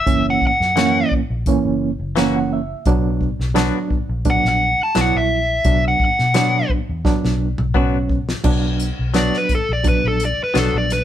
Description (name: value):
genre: straight-eighth soul blues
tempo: 86 BPM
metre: 4/4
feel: straight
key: B harmonic minor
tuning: A4 = 440 Hz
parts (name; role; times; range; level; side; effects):
- dark smooth lead guitar; melody; 0.0-11.0 s; A4 to A5; -18 LUFS; left 1 dB; overdrive
- overdriven reed electric piano; accompaniment; 0.1-11.0 s; E3 to A#5; -21 LUFS; right 4 dB; fast tremolo
- vintage muted fingered electric bass; bass; 0.1-11.0 s; F#1 to B2; -22 LUFS; left 1 dB; none
- warm soul drum kit; drums; 0.1-11.0 s; crash cymbal, hi-hat, kick drum, snare drum, toms; -22 LUFS; left 1 dB; none
- direct-recorded clean electric guitar; stabs; 0.8-10.8 s; E3 to F#4; -24 LUFS; left 6 dB; none
room: light reverb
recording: band playing live in one room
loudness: -16 LUFS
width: side -11 dB against mid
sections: 0.0-8.4 A section; 8.4-11.0 B section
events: reed electric piano fill 1.8-2.9; drum fill 7.1-8.4; lead electric guitar solo 8.4-11.0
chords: 0.1 F#7; 2.9 Bm